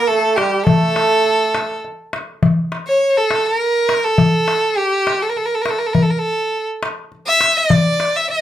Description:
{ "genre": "Arabic maqam ensemble", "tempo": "68 BPM (dotted quarters)", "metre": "6/8", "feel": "straight", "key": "A maqam hijaz", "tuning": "A4 = 440 Hz", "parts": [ { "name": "clear violin", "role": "melody", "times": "0.0-8.4 s", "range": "G4 to E5", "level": "-16 LUFS", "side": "right 1 dB", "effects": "none" }, { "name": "brilliant trombone", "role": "second line", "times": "0.0-1.8 s", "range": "G3 to A3", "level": "-19 LUFS", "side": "right 4 dB", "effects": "none" }, { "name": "darbuka", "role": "percussion", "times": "0.1-8.4 s", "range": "none", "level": "-17 LUFS", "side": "left 2 dB", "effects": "none" } ], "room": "moderate studio ambience, RT60 0.5 s", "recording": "none", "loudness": "-14 LUFS", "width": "side -12 dB against mid", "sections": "0.0-2.4 A section; 2.4-8.4 B section", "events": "none", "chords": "none" }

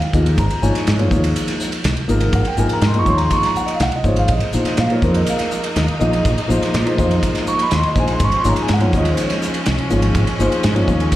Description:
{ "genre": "electric jazz fusion", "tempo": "123 BPM", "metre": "4/4", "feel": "straight", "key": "unclear", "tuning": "A4 = 441 Hz", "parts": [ { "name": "dark grand piano", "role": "accompaniment", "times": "0.0-11.2 s", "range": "F3 to Db6", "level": "-19 LUFS", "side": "left 1 dB", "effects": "slapback echo" }, { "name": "mellow fretless electric bass", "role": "bass", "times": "0.0-11.1 s", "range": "Ab1 to Bb2", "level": "-18 LUFS", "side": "equal", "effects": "none" }, { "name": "modern studio drum kit", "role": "drums", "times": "0.0-11.2 s", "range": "hi-hat, kick drum, ride cymbal, snare drum", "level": "-21 LUFS", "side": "equal", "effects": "none" }, { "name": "bright chamber string section", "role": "sustained chords", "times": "4.3-11.2 s", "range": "F3 to Eb4", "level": "-25 LUFS", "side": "equal", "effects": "none" } ], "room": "light reverb, small room ambience", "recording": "live gig heard through the venue's PA, recital hall reverb", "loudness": "-15 LUFS", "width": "side -14 dB against mid", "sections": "0.0-11.2 A section", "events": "grand piano fill 0.0-0.4", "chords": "0.4 Absus24; 4.3 Bb9sus4; 8.2 Absus24" }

